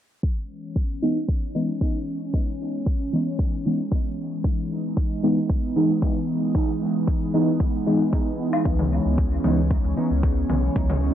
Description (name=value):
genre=dub techno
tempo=114 BPM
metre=4/4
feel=straight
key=C# minor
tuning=A4 = 441 Hz
part: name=airy breathy pad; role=sustained chords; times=0.5-11.1 s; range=E3 to D#4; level=-26 LUFS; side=equal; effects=chorus, phaser, sidechain pumping
part: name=electronic kick drum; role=drums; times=0.2-10.9 s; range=none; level=-23 LUFS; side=equal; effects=none
part: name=deep mellow chord stab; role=stabs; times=1.0-10.1 s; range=E3 to D#4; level=-25 LUFS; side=equal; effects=chorus, phaser, vintage 12-bit sampler grit, sidechain pumping, dub echo
part: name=electronic woodblock and toms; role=percussion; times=8.5-11.0 s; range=none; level=-29 LUFS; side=left 3 dB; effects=sidechain pumping on perc, sidechain pumping on toms, dub echo
part: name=soft dub sub bass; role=bass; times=8.7-11.1 s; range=B1 to C#2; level=-24 LUFS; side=equal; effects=transformer saturation, sidechain pumping
room=light reverb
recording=dry, gritty hardware recording, low-pass filter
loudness=-21 LUFS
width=side -10 dB against mid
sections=0.2-11.1 A section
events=filter sweep on synth stab 0.2-11.1; filter sweep on analog synth pad 0.2-11.1; filter sweep 0.2-11.1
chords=0.2 C#m7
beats=| 0.23 0.76 1.29 1.81 | 2.34 2.87 3.39 3.92 | 4.44 4.97 5.50 6.02 | 6.55 7.08 7.60 8.13 | 8.65 9.18 9.71 10.23 | 10.76